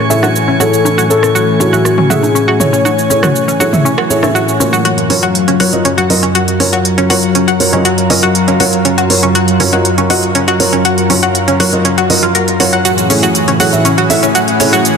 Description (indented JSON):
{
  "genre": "progressive house",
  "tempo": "120 BPM",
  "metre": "4/4",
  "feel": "straight",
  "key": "unclear",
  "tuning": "A4 = 440 Hz",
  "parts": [
    { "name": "soft octave-layered synth lead", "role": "melody", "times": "0.0-4.3 s", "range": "F#4 to C#5", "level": "-16 LUFS", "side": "left 4 dB", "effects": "chorus, tremolo, digital delay" },
    { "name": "soft round pluck", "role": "second line", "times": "0.0-4.3 s", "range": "F#4 to C#5", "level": "-23 LUFS", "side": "left 3 dB", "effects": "none" },
    { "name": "lush unison pad", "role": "sustained chords", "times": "0.0-15.0 s", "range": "F#2 to G#5", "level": "-14 LUFS", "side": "left 1 dB", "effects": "chorus" },
    { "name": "drifting glass-harmonics texture", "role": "texture", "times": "0.0-4.9 s", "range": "C#6", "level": "-26 LUFS", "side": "right 6 dB", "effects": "chorus, built-in reverb" },
    { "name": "analog pluck", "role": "arpeggios", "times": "0.1-14.8 s", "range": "C#4 to F#5", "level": "-14 LUFS", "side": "equal", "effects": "chorus, digital delay" },
    { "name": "felt-muted upright piano", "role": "stabs", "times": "0.1-14.7 s", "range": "A2 to E5", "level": "-16 LUFS", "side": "right 2 dB", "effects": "digital delay" },
    { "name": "electronic shaker and hi-hat", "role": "drums", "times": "0.1-15.0 s", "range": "none", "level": "-17 LUFS", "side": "right 2 dB", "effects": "none" },
    { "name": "punchy analog drum machine", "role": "percussion", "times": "0.2-4.3 s", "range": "congas, rim click, toms", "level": "-17 LUFS", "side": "right 2 dB", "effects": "overdrive" }
  ],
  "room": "moderate lush hall reverb, RT60 1.9 s",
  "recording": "dense, heavily limited modern master",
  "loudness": "-9 LUFS",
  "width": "side -6 dB against mid",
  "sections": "0.0-4.9 A section; 4.9-15.0 B section",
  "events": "build-up 4.9-15.0",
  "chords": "0.0 Amaj7; 4.9 F#maj7; 12.9 Amaj7",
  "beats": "0.35 | 0.85 1.35 1.85 2.35 | 2.85 3.35 3.85 4.35 | 4.85 5.35 5.85 6.35 | 6.85 7.35 7.85 8.35 | 8.85 9.35 9.85 10.35 | 10.85 11.35 11.85 12.35 | 12.85 13.35 13.85 14.35 | 14.85"
}